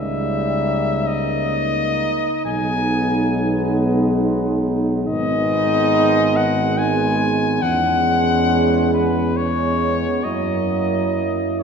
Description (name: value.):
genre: classical, hymn-like piece for brass band.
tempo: 69 BPM.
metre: 3/4.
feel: rubato.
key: G# minor.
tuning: A4 = 443 Hz.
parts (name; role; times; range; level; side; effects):
mellow cornet; melody; 0.0-11.6 s; B4 to G#5; -22 LUFS; left 4 dB; none.
dark French horn section; second line; 0.0-11.6 s; C#4 to E4; -23 LUFS; right 4 dB; none.
clear euphonium; accompaniment; 0.0-11.6 s; F#3 to G#3; -26 LUFS; right 4 dB; none.
mellow trombone section; accompaniment; 0.0-11.6 s; A#3 to B3; -25 LUFS; left 3 dB; none.
mellow tuba; bass; 0.0-11.6 s; G#1 to F#2; -23 LUFS; right 1 dB; none.
room: wet concert hall reverb, RT60 2.4 s.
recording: heard from further back in the room.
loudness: -16 LUFS.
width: side -6 dB against mid.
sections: 0.0-11.6 A section.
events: none.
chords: 0.0 D#7/C#; 2.5 G#m/B; 5.1 G#m; 7.6 C#m7/E; 10.2 F#7.